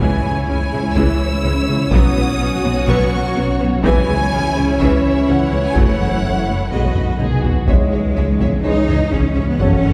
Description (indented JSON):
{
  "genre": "cinematic, hybrid orchestral and electronic film score",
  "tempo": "125 BPM",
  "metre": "4/4",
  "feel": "straight",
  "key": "C# minor",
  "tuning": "A4 = 440 Hz",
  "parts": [
    { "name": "rich symphonic violin section", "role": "melody", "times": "0.0-9.9 s", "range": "D#5 to E6", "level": "-28 LUFS", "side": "equal", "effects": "none" },
    { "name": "dark symphonic violin section", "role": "second line", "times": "0.0-9.9 s", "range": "E4 to C#5", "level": "-27 LUFS", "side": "equal", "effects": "none" },
    { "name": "rich symphonic viola section", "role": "accompaniment", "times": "0.0-9.9 s", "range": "E3 to A4", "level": "-26 LUFS", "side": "equal", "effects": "none" },
    { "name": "clear trombone section", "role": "sustained chords", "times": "0.0-9.8 s", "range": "C#3 to C#4", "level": "-26 LUFS", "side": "equal", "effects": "none" },
    { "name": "glassy FM pad", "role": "sustained chords", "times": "0.0-9.9 s", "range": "E3 to C#5", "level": "-27 LUFS", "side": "equal", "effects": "ensemble chorus, built-in reverb" },
    { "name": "rich symphonic cello section", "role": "bass", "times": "0.0-9.9 s", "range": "F#2 to D#4", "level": "-25 LUFS", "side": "equal", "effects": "none" },
    { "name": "rich symphonic double bass section", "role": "bass", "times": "0.0-9.9 s", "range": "F#1 to F#2", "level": "-25 LUFS", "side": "equal", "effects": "none" },
    { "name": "detuned saw bass", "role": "bass", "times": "0.0-9.9 s", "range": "F#1 to C#2", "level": "-26 LUFS", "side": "equal", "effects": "chorus" },
    { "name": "taiko ensemble", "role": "drums", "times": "1.0-9.9 s", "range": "none", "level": "-22 LUFS", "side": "equal", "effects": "none" },
    { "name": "mellow French horn section", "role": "sustained chords", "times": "7.7-9.8 s", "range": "G#4 to C#5", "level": "-29 LUFS", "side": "equal", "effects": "none" }
  ],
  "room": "wet concert hall reverb, RT60 2.2 s",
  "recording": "heard from further back in the room",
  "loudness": "-16 LUFS",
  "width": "mono",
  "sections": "0.0-7.7 A section; 7.7-9.9 B section",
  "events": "drum fill 7.0-7.7",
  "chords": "0.0 C#m; 1.9 Bsus2; 3.8 C#m; 5.8 F#m7; 6.7 B6; 7.7 C#m"
}